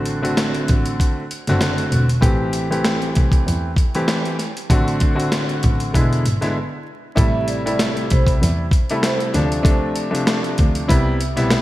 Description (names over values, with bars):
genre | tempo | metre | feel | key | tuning
hip hop, boom-bap hip-hop | 97 BPM | 4/4 | swing 56% on 16ths | A dorian, A minor from 7.2 s | A4 = 440 Hz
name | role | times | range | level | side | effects
dark grand piano | accompaniment | 0.0-11.6 s | C3 to G4 | -21 LUFS | equal | cassette tape
dark double bass | bass | 0.0-11.5 s | E1 to E2 | -21 LUFS | equal | none
dusty soul sampler-style drum kit | drums | 0.1-11.6 s | hi-hat, kick drum, snare drum | -19 LUFS | equal | gated reverb
vibraphone with soft mallets | melody | 7.2-9.3 s | C5 to E5 | -27 LUFS | right 4 dB | digital delay
room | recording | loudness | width
light reverb, small room ambience | bright 1980s-style digital production, vinyl crackle | -16 LUFS | side -16 dB against mid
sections
0.0-7.2 A section; 7.2-11.6 B section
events
break 6.6-7.2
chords
0.0 D7/A; 2.2 Am7; 4.7 D7/A; 5.9 E7; 7.2 Am7; 9.3 Dm7; 10.9 Cmaj7